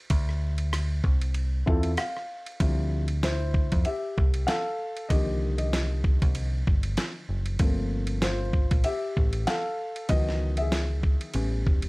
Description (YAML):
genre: hip hop, jazz-hop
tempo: 96 BPM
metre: 4/4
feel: swing 58% on 16ths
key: unclear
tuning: A4 = 440 Hz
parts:
  - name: deep dub picked electric bass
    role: bass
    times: 0.1-11.9 s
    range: E1 to F2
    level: -28 LUFS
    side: equal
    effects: none
  - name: dusty soul sampler-style drum kit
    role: drums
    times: 0.1-11.9 s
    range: hi-hat, kick drum, ride cymbal, rim click, snare drum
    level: -26 LUFS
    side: equal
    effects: none
  - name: dark concert grand piano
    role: accompaniment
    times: 1.7-11.9 s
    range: D3 to F5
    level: -31 LUFS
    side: left 1 dB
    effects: plate reverb
room: light reverb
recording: vinyl crackle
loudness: -24 LUFS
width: side -24 dB against mid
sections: 0.0-2.6 A section; 2.6-11.9 B section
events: grand piano fill 1.7-2.6; grand piano solo 2.6-11.9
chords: 0.1 Dm9; 2.6 Dm11; 5.1 Cm11; 7.6 Gm11; 10.1 C#m11; 11.3 A7